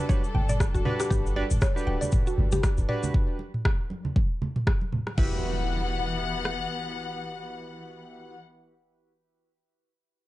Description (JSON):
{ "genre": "afro house", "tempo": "118 BPM", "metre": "4/4", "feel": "swing 57% on 16ths", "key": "E minor", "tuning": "A4 = 437 Hz", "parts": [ { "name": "dark studio string section", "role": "sustained chords", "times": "0.0-8.4 s", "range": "E3 to F#5", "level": "-34 LUFS", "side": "left 4 dB", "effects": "sidechain pumping" }, { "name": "warm analog keys", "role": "stabs", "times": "0.0-8.4 s", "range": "D4 to B4", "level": "-35 LUFS", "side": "right 2 dB", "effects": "chorus, sidechain pumping, tape echo" }, { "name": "mallet-like synth pluck", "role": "arpeggios", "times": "0.1-5.4 s", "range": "E4 to G5", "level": "-34 LUFS", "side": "left 1 dB", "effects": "chorus, sidechain pumping, tape echo" }, { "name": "afro-pop drum kit", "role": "drums", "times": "0.1-6.6 s", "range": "kick drum, rim click", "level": "-25 LUFS", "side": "equal", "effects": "none" }, { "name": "cabasa", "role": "percussion", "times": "0.1-3.1 s", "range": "none", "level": "-40 LUFS", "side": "left 4 dB", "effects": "none" }, { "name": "congas", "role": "percussion", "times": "0.1-5.2 s", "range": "none", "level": "-33 LUFS", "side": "right 2 dB", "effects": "none" }, { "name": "warm 808-style bass", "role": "bass", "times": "0.4-6.7 s", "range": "D1 to G1", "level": "-28 LUFS", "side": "equal", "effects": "sidechain pumping" }, { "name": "afro-pop drum kit", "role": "drums", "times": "0.5-5.3 s", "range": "crash cymbal, rim click, toms", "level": "-32 LUFS", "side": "equal", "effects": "none" }, { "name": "impact", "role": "sound effects", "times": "5.2-8.4 s", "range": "none", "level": "-37 LUFS", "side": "equal", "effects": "none" } ], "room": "little or no reverb", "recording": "dark, warm production, nothing above 10.6 kHz", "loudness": "-24 LUFS", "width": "side -17 dB against mid", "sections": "0.0-5.2 A section; 5.2-9.2 B section", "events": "drop 0.0-5.2", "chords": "0.0 Gmaj7; 5.2 Emadd9" }